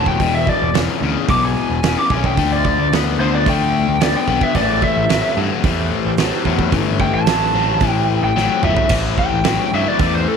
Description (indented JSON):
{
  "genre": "blues rock power trio and southern rock",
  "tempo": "110 BPM",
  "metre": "4/4",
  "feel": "straight",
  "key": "A minor",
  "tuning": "A4 = 440 Hz",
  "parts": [
    { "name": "lead guitar through a small cranked amp", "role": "melody", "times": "0.0-10.4 s", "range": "A4 to D6", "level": "-19 LUFS", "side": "equal", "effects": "overdrive, slapback echo" },
    { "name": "overdriven tonewheel organ", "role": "sustained chords", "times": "0.0-10.4 s", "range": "E4 to D5", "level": "-30 LUFS", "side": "right 14 dB", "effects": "slow rotary speaker, chorus vibrato" },
    { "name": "cranked stack guitar", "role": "riff", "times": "0.0-10.4 s", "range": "E2 to B3", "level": "-19 LUFS", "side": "left 13 dB", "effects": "overdrive" },
    { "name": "growling picked electric bass", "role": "bass", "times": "0.0-10.2 s", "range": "E1 to G2", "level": "-21 LUFS", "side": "right 1 dB", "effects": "overdrive" },
    { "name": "huge arena drum kit", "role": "drums", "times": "0.1-10.1 s", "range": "crash cymbal, hi-hat, kick drum, snare drum, toms", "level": "-21 LUFS", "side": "right 5 dB", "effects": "none" }
  ],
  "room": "light reverb, studio reverb",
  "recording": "1960s-style stereo with parts hard left and right",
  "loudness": "-14 LUFS",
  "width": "side -6 dB against mid",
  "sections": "0.0-8.9 A section; 8.9-10.4 A section",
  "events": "lead electric guitar solo 0.0-10.4; drum fill 8.4-8.9",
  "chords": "0.2 E7; 2.4 Dm7; 4.5 Am7"
}